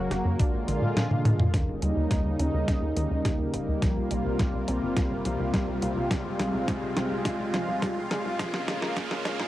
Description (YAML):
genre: synthwave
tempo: 105 BPM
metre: 4/4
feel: straight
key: unclear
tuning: A4 = 441 Hz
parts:
  - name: lush unison pad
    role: sustained chords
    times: 0.0-9.5 s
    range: C3 to Gb4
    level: -29 LUFS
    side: equal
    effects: chorus, cassette tape
  - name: wide unison pluck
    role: arpeggios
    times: 0.0-9.5 s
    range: D3 to Gb4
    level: -36 LUFS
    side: right 2 dB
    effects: cassette tape, analog delay
  - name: tight sequencer bass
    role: bass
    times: 0.0-9.5 s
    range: Eb1 to Bb2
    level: -30 LUFS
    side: equal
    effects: sidechain pumping
  - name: detuned 8-bit digital drum machine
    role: drums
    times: 0.1-9.5 s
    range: hi-hat, snare drum, toms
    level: -30 LUFS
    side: equal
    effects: cassette tape
  - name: electronic kick drum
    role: drums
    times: 0.4-9.1 s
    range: none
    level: -28 LUFS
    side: equal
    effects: cassette tape
  - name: riser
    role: sound effects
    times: 3.5-9.5 s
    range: none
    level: -41 LUFS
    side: right 1 dB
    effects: none
room: moderate booth ambience, RT60 0.2 s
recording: home recording on cassette, high-pass filter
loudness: -25 LUFS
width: side -14 dB against mid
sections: 0.0-1.5 A section; 1.5-9.5 B section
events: drum fill 1.1-1.5, 1.5-9.5; filter sweep on synth arpeggio sound 1.5-9.5; filter sweep 1.5-9.5; riser 3.5-9.5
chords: 0.4 Bb7; 1.5 Eb7; 3.8 C7sus4; 6.1 Fmadd9; 8.4 Bbm7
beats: 0.39 0.97 | 1.54 2.11 2.68 3.25 | 3.82 4.39 4.97 5.54 | 6.11 6.68 7.25 7.82 | 8.39 8.97